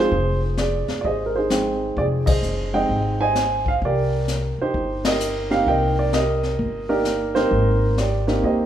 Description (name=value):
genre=jazz piano trio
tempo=130 BPM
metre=4/4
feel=swing 66% on 8ths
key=C minor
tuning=A4 = 440 Hz
part: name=warm upright piano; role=melody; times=0.0-8.7 s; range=Ab3 to Ab5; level=-20 LUFS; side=right 2 dB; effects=none
part: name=upright bass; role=bass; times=0.0-8.7 s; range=F1 to Eb2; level=-24 LUFS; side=left 1 dB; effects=none
part: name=jazz brush drum kit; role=drums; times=0.1-8.7 s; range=brushed snare drum, hi-hat, kick drum, ride cymbal, snare drum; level=-27 LUFS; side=left 3 dB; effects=none
room=wet recital hall reverb, RT60 1.6 s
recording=recorded in a church or concert hall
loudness=-19 LUFS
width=side -10 dB against mid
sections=0.0-8.7 A section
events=band accent 2.2, 5.0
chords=0.1 Fm7; 3.8 Cm7; 7.5 Abmaj7